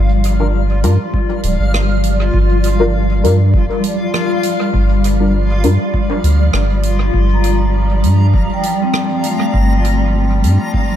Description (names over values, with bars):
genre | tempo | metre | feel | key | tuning
ambient dub | 100 BPM | 4/4 | swing 54% on 16ths | G minor | A4 = 440 Hz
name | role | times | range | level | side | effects
granular cloud pad | sustained chords | 0.0-11.0 s | F3 to D5 | -19 LUFS | right 1 dB | built-in reverb
soft dub sub bass | bass | 0.0-10.6 s | D1 to G2 | -13 LUFS | equal | none
backwards swelling texture | texture | 0.0-11.0 s | F4 to Bb5 | -23 LUFS | left 4 dB | built-in reverb
swinging big-band drum kit | drums | 0.2-10.6 s | hi-hat, rim click | -26 LUFS | right 2 dB | dub echo
filtered dub chord stab | stabs | 0.4-5.8 s | G3 to Bb4 | -21 LUFS | left 3 dB | phaser, ensemble chorus, dub echo
electronic kick drum | drums | 1.1-10.9 s | none | -18 LUFS | equal | none
vibraphone with medium mallets | arpeggios | 7.3-11.0 s | A3 to Bb5 | -21 LUFS | left 2 dB | analog delay
room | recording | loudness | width
studio ambience | echo-heavy mix | -12 LUFS | side -10 dB against mid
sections
0.0-11.0 A section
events
none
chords
0.0 Gm7